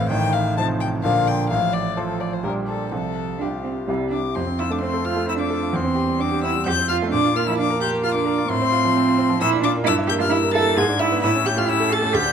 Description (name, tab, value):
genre	quick classical-period movement for piano trio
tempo	130 BPM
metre	3/4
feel	rubato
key	F major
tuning	A4 = 440 Hz
part	warm violin	melody	0.0-12.3 s	G4 to A6	-24 LUFS	left 9 dB	none
part	warm cello	second line	0.0-12.3 s	C3 to A4	-23 LUFS	right 6 dB	none
part	clear concert grand piano	accompaniment	0.0-12.3 s	A1 to C5	-22 LUFS	right 1 dB	none
room	moderate recital hall reverb, RT60 1.7 s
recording	close, detailed microphones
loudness	-18 LUFS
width	side -7 dB against mid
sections	0.0-4.4 A section; 4.4-12.3 B section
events	none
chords	0.1 F7/A; 1.0 Bb; 1.5 F/A; 2.4 Gm/Bb; 2.9 Csus4; 3.9 C; 4.4 F; 5.8 C/E; 6.7 F; 7.1 Bb5; 8.5 F/A; 9.4 Bb; 9.9 Edim/G; 10.8 E7/G#; 11.2 A7